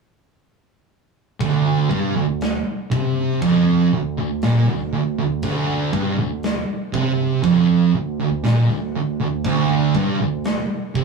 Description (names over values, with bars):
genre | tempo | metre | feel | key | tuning
stoner and doom metal | 60 BPM | 4/4 | straight | D minor | A4 = 440 Hz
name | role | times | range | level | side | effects
thick fuzz guitar | riff | 1.4-11.0 s | D2 to C3 | -24 LUFS | left 7 dB | distortion
thick fuzz guitar | riff | 1.4-11.0 s | D2 to C3 | -18 LUFS | right 7 dB | distortion
big rock drum kit | drums | 1.4-11.0 s | hi-hat, kick drum, snare drum | -27 LUFS | left 1 dB | none
room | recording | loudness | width
moderate studio ambience, RT60 0.5 s | rough rehearsal-room recording | -17 LUFS | side -4 dB against mid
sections
1.4-11.0 A section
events
none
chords
1.4 Dm